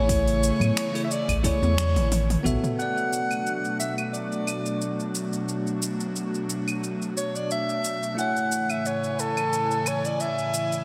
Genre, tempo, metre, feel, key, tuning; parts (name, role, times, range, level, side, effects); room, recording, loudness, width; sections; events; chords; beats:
sunset chillout; 89 BPM; 4/4; swing 54% on 16ths; B dorian; A4 = 443 Hz
mellow soprano saxophone; melody; 0.0-10.8 s; A4 to F#5; -30 LUFS; equal; delay, slapback echo
bell-like tine electric piano; accompaniment; 0.0-10.8 s; A3 to G#5; -34 LUFS; equal; digital delay, slapback echo
airy breathy pad; sustained chords; 0.0-10.8 s; A2 to G#5; -33 LUFS; equal; chorus
warm sub bass; bass; 0.0-2.6 s; A1 to A2; -26 LUFS; equal
deep house drum kit; drums; 0.1-10.8 s; claves, finger snaps, hi-hat, shaker, toms; -33 LUFS; equal; overdrive
electronic kick drum; drums; 0.1-2.6 s; -31 LUFS; equal; overdrive
congas; percussion; 0.6-2.6 s; -37 LUFS; equal
wet lush hall reverb, RT60 2.7 s; big arena sound; -26 LUFS; mono
0.0-2.8 A section; 2.8-10.8 B section
drum fill 1.4-2.8
0.0 Amaj7; 2.8 Bm7; 8.2 Amaj7
| 0.09 0.76 1.44 2.11 | 2.79 3.46 4.13 4.81 | 5.48 6.16 6.83 7.50 | 8.18 8.85 9.53 10.20